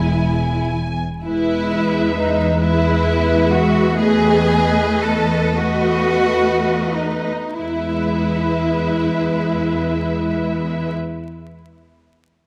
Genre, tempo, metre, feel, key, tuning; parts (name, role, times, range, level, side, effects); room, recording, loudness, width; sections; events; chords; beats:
classical, slow romantic movement for string orchestra; 27-45 BPM (dotted quarters); 6/8; rubato; E major; A4 = 440 Hz
warm studio violin section; melody; 0.0-10.9 s; D#5 to G#5; -30 LUFS; equal
rich studio violin section; second line; 0.0-10.9 s; D#4 to A4; -22 LUFS; equal
clear studio viola section; accompaniment; 0.0-10.9 s; G#3 to B4; -24 LUFS; equal
warm studio cello section; bass; 0.0-10.9 s; E2; -24 LUFS; equal
warm studio double bass section; bass; 0.0-1.0 s; E1; -26 LUFS; equal
moderate scoring stage reverb, RT60 2.2 s; close, detailed microphones, vinyl crackle; -18 LUFS; mono
0.0-1.3 A section; 1.3-7.6 B section; 7.6-11.2 C section
slowing down 0.0-7.6
0.0 E; 4.0 B7/E; 7.6 E
| 1.26 2.60 | 3.98 5.59 | 7.60 9.40